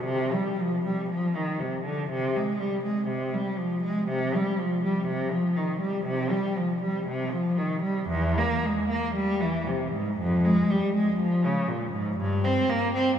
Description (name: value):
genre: classical, baroque-style suite movement for unaccompanied cello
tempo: 60 BPM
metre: 4/4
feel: rubato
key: C minor, F minor from 8.1 s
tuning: A4 = 441 Hz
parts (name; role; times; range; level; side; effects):
- warm cello; solo; 0.0-13.2 s; E2 to C4; -24 LUFS; equal; none
room: wet cathedral reverb, RT60 4.3 s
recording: minimal, uncompressed stereo recording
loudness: -24 LUFS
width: side -8 dB against mid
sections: 0.0-13.2 A section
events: none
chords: none